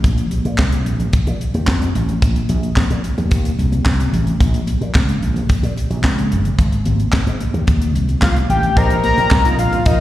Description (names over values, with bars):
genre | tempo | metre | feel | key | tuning
early-eighties boogie funk | 110 BPM | 4/4 | straight | unclear | A4 = 440 Hz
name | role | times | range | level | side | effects
slap bass with an envelope filter | bass | 0.0-9.9 s | G1 to Bb2 | -17 LUFS | equal | none
tight funk drum kit | drums | 0.0-10.0 s | handclaps, hi-hat, kick drum, snare drum | -17 LUFS | equal | none
congas | percussion | 0.3-9.8 s | none | -25 LUFS | equal | slapback echo
fat analog lead | melody | 8.2-10.0 s | Eb5 to Bb5 | -17 LUFS | left 2 dB | slapback echo, tape echo
bright concert grand piano | accompaniment | 8.8-9.4 s | Eb4 to C5 | -23 LUFS | left 2 dB | slapback echo
mellow synth brass | second line | 9.4-10.0 s | Eb4 to Bb4 | -23 LUFS | right 1 dB | chorus, slapback echo, tape echo
room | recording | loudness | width
small room ambience | live gig heard through the venue's PA, recital hall reverb | -14 LUFS | side -14 dB against mid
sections
0.0-8.8 A section; 8.8-10.0 B section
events
none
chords
0.0 F7sus4 (rootless); 4.4 Bbm; 6.6 Ab; 8.8 F7sus4